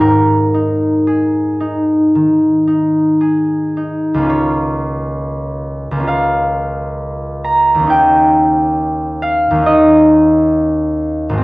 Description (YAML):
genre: classical, solo harp piece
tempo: 51-70 BPM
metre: 4/4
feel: rubato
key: unclear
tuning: A4 = 440 Hz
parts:
  - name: concert harp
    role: solo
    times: 0.0-11.4 s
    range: Ab1 to Bb5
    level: -11 LUFS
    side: equal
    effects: none
room: wet recital hall reverb, RT60 1.4 s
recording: worn, warbling old tape, cassette tape, warbly pitch drift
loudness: -11 LUFS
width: side -22 dB against mid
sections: 0.0-4.3 A section; 4.3-11.4 B section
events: none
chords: 0.0 Ab5; 4.3 Bbm/Db; 7.9 Eb7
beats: | 0.01 1.08 2.16 3.22 | 4.31 5.21 6.08 6.99 | 7.92 8.78 9.66 10.55